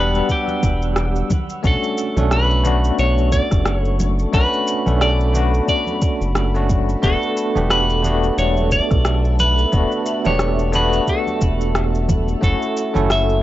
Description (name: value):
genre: sunset chillout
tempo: 89 BPM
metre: 4/4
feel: swing 57% on 16ths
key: B minor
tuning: A4 = 438 Hz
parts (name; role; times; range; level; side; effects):
- clean electric guitar; melody; 0.0-13.4 s; G4 to E5; -22 LUFS; left 1 dB; tape echo
- bell-like tine electric piano; accompaniment; 0.0-13.4 s; G3 to F#5; -22 LUFS; moving between left 4 dB and right 4 dB; medium stereo tremolo, auto-pan
- ethereal airy pad; sustained chords; 0.0-13.4 s; G3 to E6; -28 LUFS; right 2 dB; ensemble chorus, built-in reverb, vintage 12-bit sampler grit
- round analog bass; bass; 0.0-13.4 s; E1 to B1; -19 LUFS; equal; none
- electronic shaker and rim click; drums; 0.1-13.4 s; none; -26 LUFS; equal; none
- electronic kick drum; drums; 0.3-12.6 s; none; -19 LUFS; equal; none
- congas; percussion; 0.5-13.1 s; none; -28 LUFS; right 2 dB; none
room: little or no reverb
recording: dry, gritty hardware recording, cassette tape, nothing above 7.7 kHz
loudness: -15 LUFS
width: side -14 dB against mid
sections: 0.0-13.4 A section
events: none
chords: 0.0 Em9; 1.3 Bm9; 7.0 E7sus4; 12.4 F#m7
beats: 0.29 0.96 | 1.64 2.31 2.99 3.66 | 4.34 5.01 5.68 6.36 | 7.03 7.71 8.38 9.05 | 9.73 10.40 11.08 11.75 | 12.43 13.10